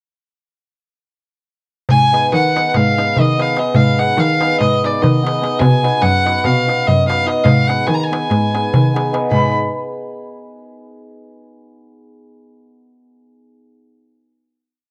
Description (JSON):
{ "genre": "balkan folk, Balkan wedding band", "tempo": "291 BPM (eighths)", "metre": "9/8", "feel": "straight", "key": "unclear", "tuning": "A4 = 442 Hz", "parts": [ { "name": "warm violin", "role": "melody", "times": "1.9-9.5 s", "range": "D5 to Cb6", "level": "-19 LUFS", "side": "equal", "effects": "cassette tape" }, { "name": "clear cello", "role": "bass", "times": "1.9-9.5 s", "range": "F#2 to Eb3", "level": "-21 LUFS", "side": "equal", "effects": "none" }, { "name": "darbuka", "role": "percussion", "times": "1.9-9.5 s", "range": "none", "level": "-20 LUFS", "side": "equal", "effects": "none" }, { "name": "hammered dulcimer", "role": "accompaniment", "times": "2.1-9.5 s", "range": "Cb4 to Cb5", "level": "-23 LUFS", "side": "equal", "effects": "cassette tape, plate reverb" } ], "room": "moderate booth ambience, RT60 0.3 s", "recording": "home recording on cassette", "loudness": "-15 LUFS", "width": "mono", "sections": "1.9-9.3 A section; 9.3-11.2 final chord", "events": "none", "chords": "1.9 Abm; 5.6 B; 7.4 Abm" }